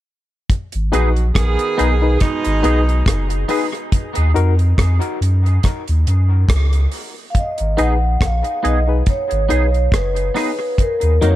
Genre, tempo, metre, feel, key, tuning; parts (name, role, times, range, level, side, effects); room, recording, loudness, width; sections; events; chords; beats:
dub reggae; 70 BPM; 4/4; swing 56% on 16ths; G# dorian; A4 = 440 Hz
deep reggae drum kit; drums; 0.5-11.4 s; hi-hat, kick drum, rim click; -19 LUFS; equal
warm sub bass; bass; 0.8-11.4 s; F#1 to F#2; -15 LUFS; equal
warm horn section; second line; 0.9-3.5 s; B2 to G#4; -23 LUFS; right 4 dB; dub echo
clean electric guitar; accompaniment; 0.9-11.4 s; F#3 to G#4; -26 LUFS; right 3 dB; analog chorus, dub echo
barky reed electric piano; stabs; 0.9-11.4 s; D#4 to B4; -24 LUFS; left 6 dB; fast tremolo, dub echo
vibraphone with medium mallets; melody; 7.3-11.4 s; A#4 to F#5; -21 LUFS; right 1 dB; dub echo
studio reverb; echo-heavy mix; -14 LUFS; side -14 dB against mid
0.5-7.4 A section; 7.4-11.4 B section
0.5 G#m; 3.9 D#m; 7.4 G#m; 10.8 D#m
| 0.50 1.36 2.22 3.07 | 3.93 4.79 5.64 6.50 | 7.36 8.21 9.07 9.93 | 10.78